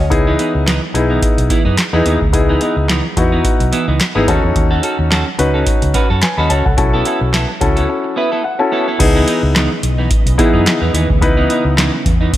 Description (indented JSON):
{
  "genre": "early-eighties boogie funk",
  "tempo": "108 BPM",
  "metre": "4/4",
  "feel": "swing 56% on 16ths",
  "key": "C# minor",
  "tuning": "A4 = 441 Hz",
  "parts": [
    { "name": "warm concert grand piano", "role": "accompaniment", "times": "0.0-11.9 s", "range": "B3 to B5", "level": "-17 LUFS", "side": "left 2 dB", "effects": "slapback echo" },
    { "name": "semi-hollow electric guitar", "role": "riff", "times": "0.0-12.4 s", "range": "E3 to B4", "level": "-20 LUFS", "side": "right 3 dB", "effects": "wide subtle chorus, slapback echo" },
    { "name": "vintage muted fingered electric bass", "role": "bass", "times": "0.0-12.3 s", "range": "G#1 to F#2", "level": "-16 LUFS", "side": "equal", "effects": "none" },
    { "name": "booming analog drum machine", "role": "drums", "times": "0.1-12.4 s", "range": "crash cymbal, handclaps, hi-hat, kick drum, snare drum", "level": "-16 LUFS", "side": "equal", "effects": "none" },
    { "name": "soft string machine", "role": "sustained chords", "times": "9.8-12.4 s", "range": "C#3 to D#5", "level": "-25 LUFS", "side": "equal", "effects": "ensemble chorus" }
  ],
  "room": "light reverb",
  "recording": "none",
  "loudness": "-12 LUFS",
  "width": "side -13 dB against mid",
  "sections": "0.0-9.0 A section; 9.0-12.4 B section",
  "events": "grand piano fill 7.9-9.0",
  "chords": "0.1 C#m9; 4.3 D#m7b5; 6.8 B7sus4; 9.0 C#m9",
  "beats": "| 0.11 0.67 1.22 1.78 | 2.33 2.89 3.45 4.00 | 4.56 5.11 5.67 6.22 | 6.78 7.33 7.89 8.45 | 9.00 9.56 10.11 10.67 | 11.22 11.78 12.34"
}